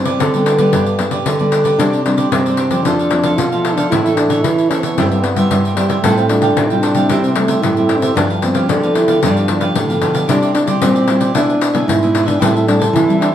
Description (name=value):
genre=samba and choro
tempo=113 BPM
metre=4/4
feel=straight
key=C major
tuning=A4 = 441 Hz
part: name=dark trombone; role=melody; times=0.0-13.3 s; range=G3 to F4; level=-17 LUFS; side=right 1 dB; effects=tape echo
part: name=nylon-string guitar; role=accompaniment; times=0.0-13.3 s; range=F2 to F4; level=-19 LUFS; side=left 1 dB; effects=none
part: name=nylon-string guitar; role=bass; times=0.0-13.3 s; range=G2 to F3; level=-18 LUFS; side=equal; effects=none
part: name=cavaquinho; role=accompaniment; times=0.1-13.3 s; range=D4 to A5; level=-23 LUFS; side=right 5 dB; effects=none
part: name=pandeiro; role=percussion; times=0.1-13.3 s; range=none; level=-19 LUFS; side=left 4 dB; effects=none
room=wet studio reverb, RT60 0.8 s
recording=heard from further back in the room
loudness=-12 LUFS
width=side -10 dB against mid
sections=0.0-1.8 A section; 1.8-13.3 A section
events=none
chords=0.0 G; 1.8 Csus2; 2.9 F; 3.9 A; 5.0 C/G; 6.0 Fadd9/A; 7.1 C; 8.2 G7; 10.3 Cadd9; 11.3 E/B; 12.4 Am7